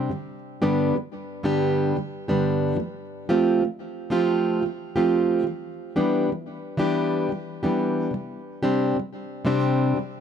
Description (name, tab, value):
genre	pop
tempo	90 BPM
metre	4/4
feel	swing 55% on 16ths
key	G mixolydian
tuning	A4 = 440 Hz
part	fingerpicked plugged-in steel-string acoustic guitar	solo	0.0-10.2 s	G2 to G4	-22 LUFS	equal	digital delay
room	moderate studio reverb, RT60 0.5 s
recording	none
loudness	-22 LUFS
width	side -8 dB against mid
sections	0.0-10.2 A section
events	none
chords	0.1 G; 2.8 Fadd9; 5.4 Em7; 8.1 Csus2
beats	| 0.10 0.77 1.44 2.11 | 2.78 3.44 4.11 4.78 | 5.45 6.11 6.78 7.45 | 8.12 8.78 9.45 10.12